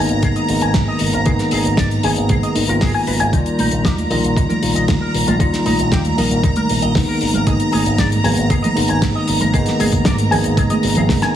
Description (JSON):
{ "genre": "nu-disco, nu disco", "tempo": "116 BPM", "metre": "4/4", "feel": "straight", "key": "unclear", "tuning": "A4 = 440 Hz", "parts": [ { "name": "tine electric piano", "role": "accompaniment", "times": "0.0-11.4 s", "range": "Eb3 to D5", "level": "-19 LUFS", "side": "equal", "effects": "vintage 12-bit sampler grit, low-pass filter, slapback echo" }, { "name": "string machine, full ensemble", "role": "sustained chords", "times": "0.0-11.4 s", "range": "Bb5", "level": "-24 LUFS", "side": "right 2 dB", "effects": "ensemble chorus, sidechain pumping" }, { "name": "fingered electric bass with an envelope filter", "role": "bass", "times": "0.0-11.2 s", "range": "Ab1 to Ab2", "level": "-21 LUFS", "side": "equal", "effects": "none" }, { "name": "damped 70s drum kit", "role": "drums", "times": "0.1-11.3 s", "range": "hi-hat, snare drum", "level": "-23 LUFS", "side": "left 2 dB", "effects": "none" }, { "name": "electric guitar with an envelope filter", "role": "riff", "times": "0.2-11.3 s", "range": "Eb4 to Ab5", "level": "-24 LUFS", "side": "left 1 dB", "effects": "analog chorus, low-pass filter, slapback echo" }, { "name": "electronic kick drum", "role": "drums", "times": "0.2-11.2 s", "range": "none", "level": "-19 LUFS", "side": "equal", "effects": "none" }, { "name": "congas", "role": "percussion", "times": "3.6-11.2 s", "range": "none", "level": "-23 LUFS", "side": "right 3 dB", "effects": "none" } ], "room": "light reverb, small room ambience", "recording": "heavily compressed radio sound, multiband compression", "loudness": "-14 LUFS", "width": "side -10 dB against mid", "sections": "0.0-11.4 A section", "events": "drum fill 11.1", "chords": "0.0 Abmadd9; 3.3 Ebmaj7; 7.2 Abmadd9", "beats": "0.23 0.74 | 1.26 1.78 2.30 2.81 | 3.33 3.85 4.37 4.88 | 5.40 5.92 6.43 6.95 | 7.47 7.99 8.50 9.02 | 9.54 10.06 10.57 11.09" }